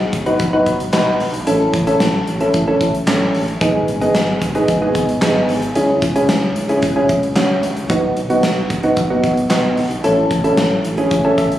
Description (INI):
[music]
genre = synth-pop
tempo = 112 BPM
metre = 4/4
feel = straight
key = B mixolydian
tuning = A4 = 443 Hz
[part]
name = soft electric-piano-like synth keys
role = accompaniment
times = 0.0-11.6 s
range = B3 to E5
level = -16 LUFS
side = equal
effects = chorus
[part]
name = round analog bass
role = bass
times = 0.0-11.6 s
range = G#1 to C#2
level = -24 LUFS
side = equal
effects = none
[part]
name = huge arena drum kit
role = drums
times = 0.1-11.6 s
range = handclaps, hi-hat, kick drum, snare drum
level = -20 LUFS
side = equal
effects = none
[sound]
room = moderate plate reverb, RT60 1.9 s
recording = recorded on a phone in the room, club reverb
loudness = -14 LUFS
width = side -12 dB against mid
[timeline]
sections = 0.0-11.6 A section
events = synth keys fill 11.1-11.6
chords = 0.0 B; 1.5 A; 3.6 G#m; 5.8 C#m; 7.9 B; 10.0 A